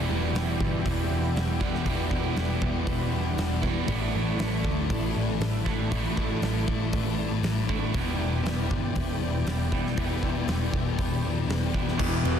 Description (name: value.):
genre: rock, shoegaze and dream pop.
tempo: 118 BPM.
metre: 4/4.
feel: straight.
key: unclear.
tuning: A4 = 442 Hz.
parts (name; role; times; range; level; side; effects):
warm analog pad; sustained chords; 0.0-12.4 s; E4 to D6; -38 LUFS; equal; chorus.
twelve-string electric guitar; arpeggios; 0.0-12.4 s; E3 to D4; -37 LUFS; right 7 dB; lush chorus, analog delay.
biting overdriven guitar; riff; 0.0-12.4 s; E2 to G4; -33 LUFS; right 12 dB; reverse reverb.
thick fuzz guitar; riff; 0.0-12.4 s; E2 to A3; -30 LUFS; left 8 dB; distortion, ensemble chorus.
vintage muted picked electric bass; bass; 0.0-12.4 s; E1 to D2; -30 LUFS; right 1 dB; none.
huge arena drum kit; drums; 0.4-12.4 s; crash cymbal, hi-hat, kick drum, ride cymbal, snare drum; -31 LUFS; equal; none.
crunchy overdriven guitar; riff; 12.0-12.4 s; E2 to E3; -28 LUFS; equal; none.
room: light reverb, small room ambience.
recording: dense, heavily limited modern master.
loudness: -24 LUFS.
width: side -8 dB against mid.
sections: 0.0-12.0 A section.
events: none.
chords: 0.0 Em7; 3.9 Asus4; 7.9 Em7.